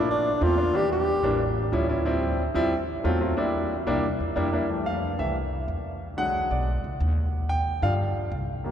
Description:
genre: jazz.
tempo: 182 BPM.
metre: 4/4.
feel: straight.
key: unclear.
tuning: A4 = 442 Hz.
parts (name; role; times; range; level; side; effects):
breathy tenor saxophone; melody; 0.0-1.5 s; D4 to G4; -27 LUFS; equal; none.
bright concert grand piano; accompaniment; 0.0-8.7 s; D3 to G5; -26 LUFS; equal; none.
upright bass; bass; 0.0-8.7 s; A1 to G2; -28 LUFS; equal; none.
room: wet cathedral reverb, RT60 5.2 s.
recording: recorded in a church or concert hall.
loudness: -23 LUFS.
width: side -9 dB against mid.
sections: 0.0-4.7 A section; 4.7-8.7 B section.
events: grand piano solo 4.7-8.7.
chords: 0.0 Gm9 (rootless); 0.7 Em7b5; 1.4 A7b13; 2.1 Dm11; 2.7 D#dim7; 3.4 Em7b5; 4.0 C7; 4.7 Fmaj7; 6.0 E9; 7.3 Ebmaj9.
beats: 0.09 0.42 | 0.74 1.07 1.40 1.73 | 2.06 2.39 2.72 3.05 | 3.38 3.71 4.04 4.37 | 4.70 5.02 5.35 5.68 | 6.01 6.34 6.67 7.00 | 7.33 7.66 7.99 8.32 | 8.65.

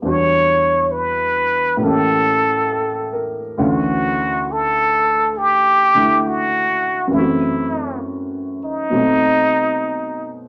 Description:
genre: jazz.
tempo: 68 BPM.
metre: 4/4.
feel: swing 66% on 8ths.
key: D major.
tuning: A4 = 440 Hz.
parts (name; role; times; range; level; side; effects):
warm baby grand piano; accompaniment; 0.0-10.5 s; D2 to F#5; -23 LUFS; equal; none.
trumpet with plunger mute; melody; 0.1-10.4 s; Eb4 to C#5; -18 LUFS; equal; none.
room: moderate club reverb, RT60 0.7 s.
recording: none.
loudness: -17 LUFS.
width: mono.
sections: 0.0-10.5 A section.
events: none.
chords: 0.0 Em9; 1.8 A7b9; 3.6 Dmaj7; 7.1 F#m7b5; 8.9 B7b9.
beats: | 0.03 0.92 1.81 2.69 | 3.58 4.47 5.36 6.24 | 7.13 8.02 8.92 9.82.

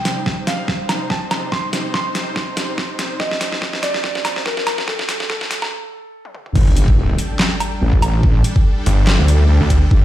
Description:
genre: heavy wobble dubstep.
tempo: 143 BPM.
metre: 4/4.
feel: swing 55% on 16ths, half-time.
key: unclear.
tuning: A4 = 439 Hz.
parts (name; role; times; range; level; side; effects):
dark grand piano; melody; 0.0-6.5 s; A4 to C6; -25 LUFS; right 1 dB; ping-pong delay.
supersaw chords; sustained chords; 0.0-10.0 s; C3 to G5; -28 LUFS; equal; sidechain pumping, low-pass filter.
dubstep drum kit; drums; 0.1-9.8 s; crash cymbal, handclaps, hi-hat, snare drum, toms, woodblock; -21 LUFS; equal; overdrive.
electronic kick drum; drums; 0.3-10.0 s; none; -16 LUFS; equal; overdrive.
wobble bass; bass; 6.6-10.0 s; G1 to D2; -14 LUFS; equal; chorus, overdrive.
impact; sound effects; 6.6-8.2 s; none; -23 LUFS; equal; none.
snarling distorted saw bass; bass; 8.9-9.8 s; G1 to D2; -14 LUFS; equal; distortion, overdrive.
room: light reverb, digital ambience.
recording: played on a big sound system in a bare room, stone room reverb, high-pass filter.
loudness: -15 LUFS.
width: side -13 dB against mid.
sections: 0.0-6.6 A section; 6.6-10.0 B section.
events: build-up 0.0-6.6; drum fill 0.0-5.7, 6.2-6.6; filter sweep on supersaw synth 0.0-6.6; filter sweep 0.0-6.6; break 5.7-6.6; drop 6.6-10.0; impact 6.6-8.2.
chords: 0.0 Cm; 6.6 Gsus2.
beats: 0.26 0.68 1.10 | 1.52 1.94 2.36 2.78 | 3.20 3.62 4.04 4.46 | 4.88 5.30 5.72 6.14 | 6.55 6.97 7.39 7.81 | 8.23 8.65 9.07 9.49 | 9.91.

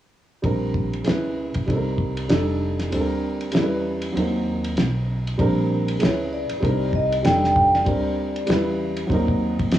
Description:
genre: hip hop, jazz-hop.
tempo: 97 BPM.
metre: 4/4.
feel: swing 59% on 16ths.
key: unclear.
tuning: A4 = 441 Hz.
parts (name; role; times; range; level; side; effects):
dark grand piano; accompaniment; 0.4-9.8 s; Db3 to Cb5; -23 LUFS; right 2 dB; cassette tape.
upright bass; bass; 0.4-9.8 s; F1 to E2; -26 LUFS; left 1 dB; none.
cloth-damped thuddy drum kit; drums; 0.4-9.8 s; hi-hat, kick drum, ride cymbal, snare drum; -26 LUFS; left 1 dB; none.
vibraphone with soft mallets; melody; 6.0-9.6 s; Db5 to G5; -23 LUFS; equal; cassette tape.
room: light reverb, small room ambience.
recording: home recording on cassette.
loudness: -20 LUFS.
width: side -12 dB against mid.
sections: 0.4-5.4 A section; 5.4-9.8 B section.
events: kick muted 2.9-5.4.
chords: 0.4 Bb69; 1.1 Dbm7; 1.7 Cm7; 2.3 F13; 2.9 Bb69/D; 3.5 Em6; 4.2 Ebm6; 5.4 Bb69; 6.0 Dbm7; 6.6 Cm7; 7.2 F13; 7.9 Bb69/D; 8.5 Em6; 9.1 Ebm6.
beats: | 0.44 1.06 1.68 2.30 | 2.92 3.54 4.15 4.77 | 5.39 6.01 6.63 7.25 | 7.87 8.48 9.10 9.72.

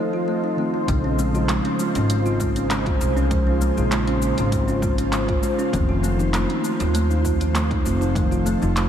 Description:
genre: organic downtempo.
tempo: 99 BPM.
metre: 4/4.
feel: straight.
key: Bb minor.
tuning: A4 = 442 Hz.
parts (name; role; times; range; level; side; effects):
muted felt-like synth keys; accompaniment; 0.0-8.9 s; Db3 to C5; -27 LUFS; left 2 dB; chorus, sidechain pumping, ping-pong delay.
ethereal airy pad; sustained chords; 0.0-8.9 s; F3 to Eb5; -26 LUFS; right 1 dB; ensemble chorus, built-in reverb, phaser, sidechain pumping.
kalimba; arpeggios; 0.0-8.9 s; Ab3 to F4; -25 LUFS; equal; ping-pong delay.
upright bass; bass; 0.9-8.9 s; F1 to Eb2; -23 LUFS; equal; tube saturation.
deep house drum kit; drums; 0.9-8.9 s; cabasa, handclaps, hi-hat; -30 LUFS; equal; overdrive, studio reverb.
electronic kick drum; drums; 0.9-8.3 s; none; -25 LUFS; equal; overdrive, studio reverb.
room: moderate cathedral reverb, RT60 5.7 s.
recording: dreamy mix soaked in reverb.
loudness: -19 LUFS.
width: side -9 dB against mid.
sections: 0.9-8.9 A section.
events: none.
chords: 0.0 F7; 0.9 Bbm7; 5.7 F7.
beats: 0.28 | 0.88 1.49 2.10 2.70 | 3.31 3.91 4.52 5.12 | 5.73 6.34 6.94 7.55 | 8.15 8.76.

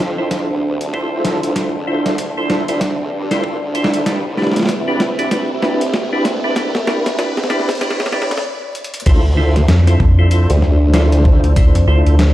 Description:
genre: glitch hop.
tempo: 96 BPM.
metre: 4/4.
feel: swing 60% on 16ths.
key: D dorian.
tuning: A4 = 440 Hz.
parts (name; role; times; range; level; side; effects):
dark analog pad; sustained chords; 0.0-12.3 s; C4 to A5; -22 LUFS; right 1 dB; chorus, sidechain pumping.
formant-sweep wobble bass; bass; 0.0-11.4 s; C2 to G2; -19 LUFS; equal; chorus, high-pass filter.
boom bap sampler-style drum kit; drums; 0.0-12.3 s; crash cymbal, hi-hat, snare drum; -20 LUFS; equal; none.
riser; sound effects; 0.6-8.4 s; none; -27 LUFS; left 1 dB; none.
percussive tonewheel organ; stabs; 0.2-12.2 s; D4 to C5; -21 LUFS; equal; chorus vibrato, slow rotary speaker, vintage 12-bit sampler grit, sidechain pumping, tape echo.
electronic kick drum; drums; 0.3-11.7 s; none; -14 LUFS; equal; high-pass filter on kick.
rubbery square bass; bass; 9.7-12.3 s; D2 to F2; -11 LUFS; equal; none.
room: light reverb.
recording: played on a big sound system in a bare room, large studio reverb, vinyl crackle, high-pass filter.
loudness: -13 LUFS.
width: side -14 dB against mid.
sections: 0.0-9.1 A section; 9.1-12.3 B section.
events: build-up 0.0-9.1; drum fill 0.0-8.4, 8.8-9.1; filter sweep 0.0-9.1; riser 0.6-8.4; stop 8.4-9.1; drop 9.1-12.3.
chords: 0.0 Dm7; 4.1 Cmaj7; 9.1 Dm7.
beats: 0.31 0.94 | 1.56 2.19 2.81 3.44 | 4.06 4.69 5.31 5.94 | 6.56 7.19 7.81 8.44 | 9.06 9.69 10.31 10.94 | 11.56 12.19.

